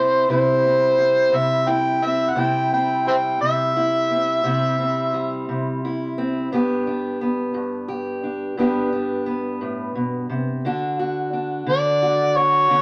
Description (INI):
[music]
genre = acoustic country blues, solo or duo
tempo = 58 BPM (dotted quarters)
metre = 12/8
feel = straight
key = G major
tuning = A4 = 439 Hz
[part]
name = overdriven harmonica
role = melody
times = 0.0-5.4, 11.7-12.8 s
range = C5 to G5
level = -20 LUFS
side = equal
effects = none
[part]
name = fingerpicked steel-string acoustic guitar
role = accompaniment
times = 0.0-12.8 s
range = G2 to G4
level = -25 LUFS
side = equal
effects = none
[sound]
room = moderate studio reverb, RT60 0.7 s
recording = none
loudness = -21 LUFS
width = mono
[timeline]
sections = 0.0-12.8 A section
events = none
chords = 0.0 C; 6.5 G; 10.7 D